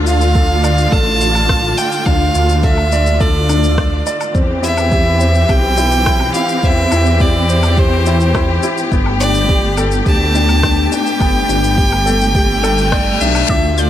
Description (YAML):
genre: piano and strings electronica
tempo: 105 BPM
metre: 4/4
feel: straight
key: unclear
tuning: A4 = 445 Hz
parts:
  - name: warm studio string section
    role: sustained chords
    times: 0.0-13.9 s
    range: D3 to G4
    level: -20 LUFS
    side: equal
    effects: shimmer reverb
  - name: felt-muted upright piano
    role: riff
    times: 0.0-13.9 s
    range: B3 to D5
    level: -20 LUFS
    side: left 2 dB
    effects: shimmer reverb
  - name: dark detuned saw bass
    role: bass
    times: 0.0-13.9 s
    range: G1 to E2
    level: -16 LUFS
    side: equal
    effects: sidechain pumping
  - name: clear violin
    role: melody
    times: 0.1-13.9 s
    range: C5 to A5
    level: -17 LUFS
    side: right 1 dB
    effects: shimmer reverb
  - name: electronic shaker, woodblock and rim click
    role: drums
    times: 0.1-13.9 s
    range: none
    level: -26 LUFS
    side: left 3 dB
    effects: studio reverb
  - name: electronic kick drum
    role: drums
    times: 0.4-13.6 s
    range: none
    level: -16 LUFS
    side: equal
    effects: studio reverb
  - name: reverse cymbal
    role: sound effects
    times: 12.6-13.5 s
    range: none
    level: -21 LUFS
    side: left 7 dB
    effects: none
  - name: analog pluck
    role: arpeggios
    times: 13.5-13.8 s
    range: D5 to G6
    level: -24 LUFS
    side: left 3 dB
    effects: chorus, sidechain pumping, shimmer reverb
room: light reverb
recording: none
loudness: -11 LUFS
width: side -11 dB against mid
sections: 0.0-13.9 A section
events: reverse cymbal 12.6-13.5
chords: 0.0 Dm; 4.3 C; 8.9 Gadd9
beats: 0.35 0.92 1.49 | 2.06 2.63 3.21 3.78 | 4.35 4.92 5.49 6.06 | 6.63 7.21 7.78 8.35 | 8.92 9.49 10.06 10.63 | 11.21 11.78 12.35 12.92 | 13.49